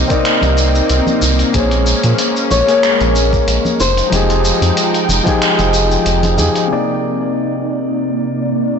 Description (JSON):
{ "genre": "sunset chillout", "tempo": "93 BPM", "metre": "4/4", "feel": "swing 54% on 16ths", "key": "C minor", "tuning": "A4 = 440 Hz", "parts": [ { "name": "flamenco guitar", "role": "melody", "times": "0.0-6.0 s", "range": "C5 to D5", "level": "-19 LUFS", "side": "left 5 dB", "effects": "tape echo" }, { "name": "dark baby grand piano", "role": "accompaniment", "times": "0.0-8.8 s", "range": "C3 to D5", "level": "-16 LUFS", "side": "left 2 dB", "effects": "auto-pan, vintage 12-bit sampler grit, tape echo" }, { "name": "lush unison pad", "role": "sustained chords", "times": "0.0-8.8 s", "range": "C3 to G5", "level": "-19 LUFS", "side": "equal", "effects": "chorus, phaser" }, { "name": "round analog bass", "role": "bass", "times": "0.0-6.5 s", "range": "F1 to Bb2", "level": "-16 LUFS", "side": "right 1 dB", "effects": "none" }, { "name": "dusty soul sampler-style drum kit", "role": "drums", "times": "0.1-6.7 s", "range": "finger snaps, hi-hat, shaker", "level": "-18 LUFS", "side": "equal", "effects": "low-pass filter on perc, low-pass filter on hats, soft clipping on snare, low-pass filter on snare, low-pass filter on room" }, { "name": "electronic kick drum", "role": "drums", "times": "0.1-5.4 s", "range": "none", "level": "-20 LUFS", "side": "right 1 dB", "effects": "none" }, { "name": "congas", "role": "percussion", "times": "0.4-6.5 s", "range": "none", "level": "-26 LUFS", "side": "right 2 dB", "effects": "none" } ], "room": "wet concert hall reverb, RT60 2.4 s", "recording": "blown-out, overdriven recording, overdrive, nothing above 8.0 kHz", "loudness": "-12 LUFS", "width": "side -6 dB against mid", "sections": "0.0-6.7 A section; 6.7-8.8 B section", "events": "filter sweep on analog synth pad 6.7-8.8", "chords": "0.0 Cm9; 1.5 Bbm9; 3.8 Fm9; 6.7 Cm9", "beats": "0.25 0.90 | 1.54 2.19 2.83 3.48 | 4.12 4.77 5.41 6.06 | 6.71 7.35 8.00 8.64" }